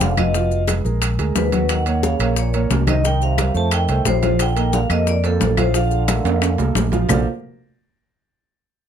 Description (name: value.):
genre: Afro-Cuban jazz.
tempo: 178 BPM.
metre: 4/4.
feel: straight.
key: Bb major.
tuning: A4 = 440 Hz.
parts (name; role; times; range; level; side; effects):
vibraphone with medium hard mallets; melody; 0.0-7.2 s; A4 to A5; -24 LUFS; left 2 dB; none.
trombone with cup mute; second line; 0.0-7.3 s; F2 to F3; -29 LUFS; right 6 dB; none.
warm upright piano; accompaniment; 0.0-7.2 s; Eb3 to Gb5; -24 LUFS; right 6 dB; none.
fingered electric bass; bass; 0.0-7.2 s; F1 to F2; -19 LUFS; equal; none.
bongos; percussion; 0.0-7.2 s; none; -28 LUFS; left 10 dB; none.
congas; percussion; 0.0-7.2 s; none; -25 LUFS; left 3 dB; none.
maracas; percussion; 0.0-7.2 s; none; -32 LUFS; left 7 dB; none.
timbales; percussion; 0.0-7.2 s; none; -27 LUFS; right 7 dB; none.
claves; percussion; 0.2-7.2 s; none; -28 LUFS; left 8 dB; none.
room: little or no reverb.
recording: none.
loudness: -16 LUFS.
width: side -8 dB against mid.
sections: 0.0-7.1 A section; 7.1-8.4 B section.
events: drum fill 6.2-7.1.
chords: 0.3 Fm7b5; 1.0 Bb7b9; 1.7 Ebm9; 3.0 Cm7; 3.7 Bbmaj9.